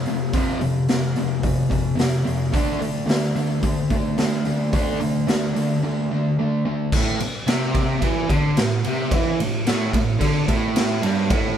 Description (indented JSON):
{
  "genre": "garage rock duo or trio",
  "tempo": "109 BPM",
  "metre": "4/4",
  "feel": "straight",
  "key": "A minor",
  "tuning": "A4 = 441 Hz",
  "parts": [
    { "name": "fuzz guitar", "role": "riff", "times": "0.0-11.6 s", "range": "F2 to D4", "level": "-21 LUFS", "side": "equal", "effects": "distortion" },
    { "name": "raw garage drum kit", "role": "drums", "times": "0.1-11.4 s", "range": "crash cymbal, hi-hat, kick drum, ride cymbal, snare drum", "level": "-23 LUFS", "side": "equal", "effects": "none" }
  ],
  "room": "moderate studio reverb, RT60 0.8 s",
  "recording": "band playing live in one room",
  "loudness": "-19 LUFS",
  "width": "side -9 dB against mid",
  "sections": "0.0-6.9 A section; 6.9-11.6 B section",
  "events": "none",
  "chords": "0.0 F5; 2.5 D5; 6.9 Am"
}